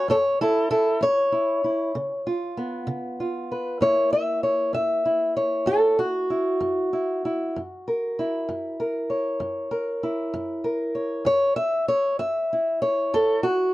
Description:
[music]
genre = acoustic country blues, solo or duo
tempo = 64 BPM (dotted quarters)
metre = 12/8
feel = straight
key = F# mixolydian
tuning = A4 = 440 Hz
[part]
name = fingerpicked old ladder-braced acoustic guitar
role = solo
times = 0.0-13.7 s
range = F#2 to E5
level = -22 LUFS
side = equal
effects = none
[sound]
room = light reverb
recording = dark, warm production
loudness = -22 LUFS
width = side -17 dB against mid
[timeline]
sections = 0.0-3.8 A section; 3.8-13.7 B section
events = steel-string acoustic guitar solo 0.0-3.8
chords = 0.0 F#5; 1.9 C#7; 3.8 F#7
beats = | 0.09 1.02 1.95 2.88 | 3.81 4.74 5.67 6.60 | 7.53 8.46 9.40 10.33 | 11.26 12.19 13.13

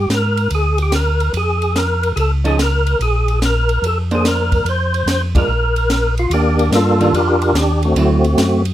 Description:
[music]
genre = soul jazz organ trio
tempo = 145 BPM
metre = 4/4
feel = swing 67% on 8ths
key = Bb major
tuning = A4 = 442 Hz
[part]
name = percussive tonewheel organ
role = melody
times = 0.0-8.6 s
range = A3 to C5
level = -17 LUFS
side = equal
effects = overdrive, chorus vibrato, fast rotary speaker
[part]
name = mellow tonewheel organ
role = bass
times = 0.0-8.7 s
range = Bb1 to Ab2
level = -17 LUFS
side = equal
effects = slow rotary speaker
[part]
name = compact cocktail drum kit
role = drums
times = 0.1-8.7 s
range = hi-hat, kick drum, ride cymbal, snare drum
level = -23 LUFS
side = equal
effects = none
[part]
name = vintage hollow-body jazz guitar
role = accompaniment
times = 2.4-8.2 s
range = D3 to C5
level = -20 LUFS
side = right 3 dB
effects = none
[sound]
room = moderate club reverb, RT60 0.6 s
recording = none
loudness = -13 LUFS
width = side -12 dB against mid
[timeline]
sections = 0.0-6.3 A section; 6.3-8.7 B section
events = band accent 5.3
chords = 0.0 Gm; 1.3 Fm(b13); 3.0 Bbadd9; 4.7 Fm; 5.5 Bb5; 6.3 Ebmaj9; 8.0 D9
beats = 0.10 0.52 0.93 | 1.34 1.76 2.17 2.58 | 3.00 3.41 3.83 4.24 | 4.65 5.07 5.48 5.90 | 6.31 6.72 7.14 7.55 | 7.96 8.38

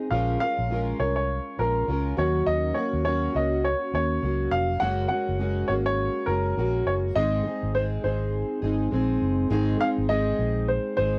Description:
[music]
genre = acoustic pop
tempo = 102 BPM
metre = 4/4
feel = swing 60% on 16ths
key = unclear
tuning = A4 = 440 Hz
[part]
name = fingerpicked plugged-in steel-string acoustic guitar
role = accompaniment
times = 0.0-11.2 s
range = Gb2 to Bb4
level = -29 LUFS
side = equal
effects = double-tracked
[part]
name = warm upright piano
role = melody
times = 0.1-11.2 s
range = Bb4 to Gb5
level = -30 LUFS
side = equal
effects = none
[part]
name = vintage muted fingered electric bass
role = bass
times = 0.1-11.2 s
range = F1 to Eb2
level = -30 LUFS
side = equal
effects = none
[sound]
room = light reverb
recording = home recording on cassette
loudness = -25 LUFS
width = mono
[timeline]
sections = 0.1-9.5 A section; 9.5-11.2 B section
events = none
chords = 0.1 Bbm7; 2.2 Ebm7; 4.8 Gbadd9; 7.2 Ab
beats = | 0.11 0.70 1.29 1.88 | 2.46 3.05 3.64 4.22 | 4.81 5.40 5.99 6.57 | 7.16 7.75 8.33 8.92 | 9.51 10.09 10.68

